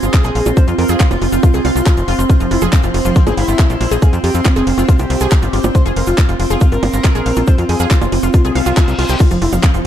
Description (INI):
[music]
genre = psychedelic trance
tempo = 139 BPM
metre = 4/4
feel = straight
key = F harmonic minor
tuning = A4 = 440 Hz
[part]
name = overdriven synth lead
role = melody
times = 0.0-9.8 s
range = F3 to C5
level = -21 LUFS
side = equal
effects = distortion, phaser, sidechain pumping, ping-pong delay
[part]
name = evolving wavetable pad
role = sustained chords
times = 0.0-9.9 s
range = F3 to C4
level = -21 LUFS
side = right 2 dB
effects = phaser, built-in reverb, sidechain pumping
[part]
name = wide unison pluck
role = riff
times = 0.0-9.8 s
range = F4 to F5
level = -22 LUFS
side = moving between left 5 dB and right 2 dB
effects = auto-pan, sidechain pumping, ping-pong delay
[part]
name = tight sequencer bass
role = bass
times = 0.0-9.8 s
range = F1 to F2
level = -17 LUFS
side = equal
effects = none
[part]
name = garage drum kit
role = drums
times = 0.0-9.8 s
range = bongos, crash cymbal, handclaps, hi-hat, ride cymbal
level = -23 LUFS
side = right 3 dB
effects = none
[part]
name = egg shaker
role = percussion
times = 0.0-9.8 s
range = none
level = -33 LUFS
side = right 3 dB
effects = none
[part]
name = dark chamber string section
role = texture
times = 0.0-9.9 s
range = C4 to C6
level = -26 LUFS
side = equal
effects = sidechain pumping
[part]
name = electronic kick drum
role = drums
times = 0.1-9.7 s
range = none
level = -12 LUFS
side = equal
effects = none
[part]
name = metallic wobble bass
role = second line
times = 2.7-5.0, 9.6-9.8 s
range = C4 to F4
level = -31 LUFS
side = left 5 dB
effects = none
[part]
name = reverse cymbal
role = sound effects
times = 8.5-9.2 s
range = none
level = -26 LUFS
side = left 2 dB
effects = none
[sound]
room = light reverb, digital ambience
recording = dark, warm production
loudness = -11 LUFS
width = side -10 dB against mid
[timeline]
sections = 0.0-9.9 A section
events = reverse cymbal 8.5-9.2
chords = 0.0 F5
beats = 0.14 | 0.57 1.00 1.43 1.86 | 2.29 2.73 3.16 3.59 | 4.02 4.45 4.88 5.32 | 5.75 6.18 6.61 7.04 | 7.47 7.91 8.34 8.77 | 9.20 9.63